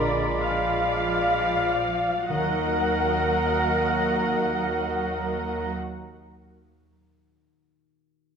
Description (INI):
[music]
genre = classical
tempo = 34 BPM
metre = 4/4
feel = rubato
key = Eb minor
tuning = A4 = 440 Hz
[part]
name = muted symphonic violin section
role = melody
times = 0.0-5.7 s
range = Bb4 to Eb5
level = -34 LUFS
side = left 1 dB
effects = none
[part]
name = bright clarinet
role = second line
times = 0.0-5.7 s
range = F4 to Bb4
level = -34 LUFS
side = right 1 dB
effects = none
[part]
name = clear oboe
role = second line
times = 0.0-5.8 s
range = Bb5 to Cb6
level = -35 LUFS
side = right 3 dB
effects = none
[part]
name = muted symphonic violin section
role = second line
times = 0.0-5.7 s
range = D4 to Gb4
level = -37 LUFS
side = left 2 dB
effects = none
[part]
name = dark bassoon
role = accompaniment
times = 0.0-5.7 s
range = Ab3 to Bb3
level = -31 LUFS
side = equal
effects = none
[part]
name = muted symphonic viola section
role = accompaniment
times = 0.0-5.7 s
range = D5 to Gb5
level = -29 LUFS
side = equal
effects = none
[part]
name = mellow French horn section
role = sustained chords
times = 0.0-5.7 s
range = Gb3 to F4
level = -37 LUFS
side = equal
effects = none
[part]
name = concert harp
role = arpeggios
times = 0.0-6.2 s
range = Bb2 to Gb5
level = -37 LUFS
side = left 8 dB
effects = none
[part]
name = muted symphonic cello section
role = bass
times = 0.0-5.7 s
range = D3 to Gb3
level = -34 LUFS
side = right 4 dB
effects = none
[part]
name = muted symphonic double bass section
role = bass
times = 0.0-5.7 s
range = Bb1 to Eb2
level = -34 LUFS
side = right 2 dB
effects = none
[part]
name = mellow hollow silver concert flute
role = second line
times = 0.4-5.7 s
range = F5 to Gb5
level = -29 LUFS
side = left 3 dB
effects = none
[part]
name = mellow trombone section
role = sustained chords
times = 2.3-5.7 s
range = Eb3 to Bb3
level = -34 LUFS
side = right 4 dB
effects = none
[part]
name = bright trumpet section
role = stabs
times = 2.3-5.7 s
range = Bb4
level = -34 LUFS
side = right 2 dB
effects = none
[part]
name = timpani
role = percussion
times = 2.3-5.7 s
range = Eb3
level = -39 LUFS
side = equal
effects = none
[sound]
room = wet recital hall reverb, RT60 1.8 s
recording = minimal, uncompressed stereo recording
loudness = -22 LUFS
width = side -6 dB against mid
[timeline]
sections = 0.0-2.3 A section; 2.3-8.4 B section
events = slowing down 0.0-2.3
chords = 0.0 Bb7b9; 2.3 Ebm